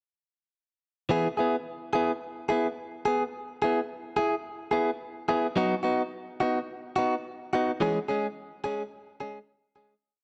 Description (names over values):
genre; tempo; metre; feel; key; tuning
highlife; 107 BPM; 4/4; straight; E major; A4 = 443 Hz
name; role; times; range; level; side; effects
direct-recorded clean electric guitar; solo; 1.1-9.9 s; E3 to G#4; -29 LUFS; equal; none
room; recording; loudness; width
moderate echo chamber reverb, RT60 2.0 s; none; -29 LUFS; mono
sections
1.1-10.0 A section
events
fade-out 7.8-10.0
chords
1.1 E; 5.6 B; 7.8 C#5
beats
| 1.10 1.66 2.22 2.78 | 3.34 3.90 4.46 5.02 | 5.58 6.14 6.70 7.25 | 7.81 8.37 8.93 9.49